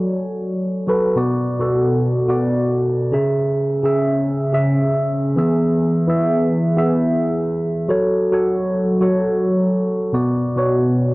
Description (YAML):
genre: afrobeats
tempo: 107 BPM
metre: 4/4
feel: swing 55% on 16ths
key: B dorian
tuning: A4 = 441 Hz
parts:
  - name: mellow tine electric piano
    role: solo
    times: 0.0-11.1 s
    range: B2 to E5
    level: -16 LUFS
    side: equal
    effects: phaser
room: light reverb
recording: dry, gritty hardware recording, transformer saturation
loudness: -16 LUFS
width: side -22 dB against mid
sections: 0.0-1.2 A section; 1.2-11.1 B section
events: none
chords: 0.0 F#m; 1.2 Bm; 3.1 C#m; 5.4 E; 7.9 F#m; 10.1 Bm